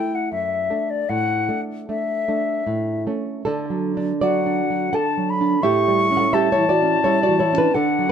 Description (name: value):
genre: romantic duo for flute and classical guitar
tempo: 74-86 BPM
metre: 3/4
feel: rubato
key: D major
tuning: A4 = 440 Hz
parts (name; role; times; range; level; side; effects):
- concert flute; melody; 0.0-8.1 s; D5 to C#6; -22 LUFS; left 5 dB; none
- nylon-string guitar; accompaniment; 0.0-8.1 s; F#2 to F#5; -20 LUFS; right 2 dB; none
room: light reverb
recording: band playing live in one room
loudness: -18 LUFS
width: side -8 dB against mid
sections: 0.0-3.5 A section; 3.5-8.1 B section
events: none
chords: 0.3 D/F#; 1.1 Asus4; 2.7 A; 3.5 D; 5.6 A7